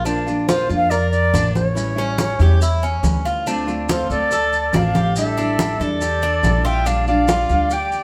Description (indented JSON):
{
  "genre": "latin, Cuban son and guajira",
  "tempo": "141 BPM",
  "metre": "4/4",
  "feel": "straight",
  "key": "D minor",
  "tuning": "A4 = 440 Hz",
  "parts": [
    { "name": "nylon-string guitar", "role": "accompaniment", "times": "0.0-7.8 s", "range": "D3 to F4", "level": "-28 LUFS", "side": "equal", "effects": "none" },
    { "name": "Cuban tres", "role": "arpeggios", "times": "0.0-8.0 s", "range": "C#4 to Bb4", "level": "-28 LUFS", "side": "equal", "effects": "none" },
    { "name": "upright bass", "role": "bass", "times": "0.0-8.0 s", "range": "A1 to F2", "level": "-23 LUFS", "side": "equal", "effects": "none" },
    { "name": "congas", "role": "percussion", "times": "0.1-8.0 s", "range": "none", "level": "-25 LUFS", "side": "equal", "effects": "none" },
    { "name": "maracas", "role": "percussion", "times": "0.1-8.0 s", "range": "none", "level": "-37 LUFS", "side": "equal", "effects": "none" },
    { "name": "silver concert flute", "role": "melody", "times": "0.5-8.0 s", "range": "C5 to G5", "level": "-23 LUFS", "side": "equal", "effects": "none" },
    { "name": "clear trumpet", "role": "second line", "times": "3.9-8.0 s", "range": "A4 to E5", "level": "-31 LUFS", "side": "equal", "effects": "none" }
  ],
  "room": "moderate studio reverb, RT60 0.9 s",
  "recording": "band playing live in one room",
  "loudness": "-18 LUFS",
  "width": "mono",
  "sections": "0.0-3.5 A section; 3.5-8.0 A section",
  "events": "none",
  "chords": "0.1 Bb; 1.8 A7; 3.5 Dm7; 5.2 A7sus4; 6.9 Gm7/Bb"
}